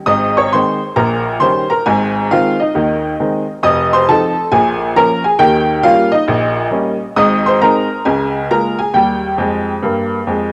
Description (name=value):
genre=jazz, stride piano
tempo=136 BPM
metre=4/4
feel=swing 66% on 8ths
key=Ab major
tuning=A4 = 439 Hz
part: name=bright upright piano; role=solo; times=0.1-10.5 s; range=F1 to Eb6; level=-14 LUFS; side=equal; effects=cassette tape
room=moderate lush hall reverb, RT60 2.7 s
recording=home recording on cassette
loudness=-14 LUFS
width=mono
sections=0.0-10.5 A section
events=none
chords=0.1 Ab; 1.0 Eb7/Bb; 1.9 Ab; 3.6 F7; 4.5 Bbm; 5.4 Eb7; 7.2 Ab; 8.1 Db6; 8.9 Eb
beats=| 0.09 0.53 0.97 1.41 | 1.86 2.30 2.74 3.18 | 3.63 4.07 4.51 4.95 | 5.40 5.84 6.28 6.72 | 7.17 7.61 8.05 8.49 | 8.94 9.38 9.82 10.26